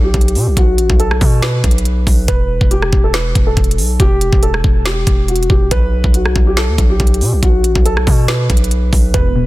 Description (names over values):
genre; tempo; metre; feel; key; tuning
hip hop, trap; 140 BPM; 4/4; half-time; unclear; A4 = 438 Hz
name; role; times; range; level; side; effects
dark grand piano; melody; 0.0-9.5 s; F#4 to B4; -19 LUFS; equal; low-pass filter
distorted 808-style bass; bass; 0.0-9.5 s; E1 to B2; -16 LUFS; equal; distortion
trap drum kit; drums; 0.1-9.2 s; hi-hat, kick drum, rim click, snare drum; -13 LUFS; equal; none
warbly dusty pluck; accompaniment; 9.1-9.5 s; E2 to B2; -16 LUFS; left 1 dB; chorus, phaser, low-pass filter
room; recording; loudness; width
little or no reverb; dense, heavily limited modern master; -11 LUFS; side -17 dB against mid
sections
0.0-9.5 A section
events
none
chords
0.0 N.C.; 2.3 Em; 5.7 B5